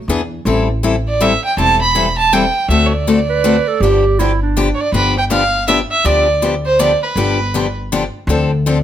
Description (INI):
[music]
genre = acoustic string swing (jazz manouche)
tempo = 161 BPM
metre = 3/4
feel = swing 62% on 8ths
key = G mixolydian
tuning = A4 = 440 Hz
[part]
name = breathy clarinet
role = second line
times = 0.0, 3.3-4.9 s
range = D4 to B4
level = -17 LUFS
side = right 5 dB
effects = none
[part]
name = picked steel-string acoustic guitar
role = accompaniment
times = 0.1-8.8 s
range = D3 to A4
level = -17 LUFS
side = left 4 dB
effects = none
[part]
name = upright bass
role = bass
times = 0.1-8.8 s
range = E1 to E2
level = -18 LUFS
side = equal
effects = none
[part]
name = warm violin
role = melody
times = 1.1-7.7 s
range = B4 to B5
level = -15 LUFS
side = right 3 dB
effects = plate reverb
[sound]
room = light reverb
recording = none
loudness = -12 LUFS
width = side -10 dB against mid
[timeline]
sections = 0.0-4.9 A section; 4.9-8.8 A section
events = none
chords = 0.1 E7; 0.5 Am7; 2.7 D7; 3.8 G7; 8.3 Dm7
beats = 0.09 | 0.46 0.83 1.21 | 1.58 1.95 2.32 | 2.70 3.07 3.44 | 3.81 4.19 4.56 | 4.93 5.30 5.68 | 6.05 6.42 6.79 | 7.17 7.54 7.91 | 8.29 8.66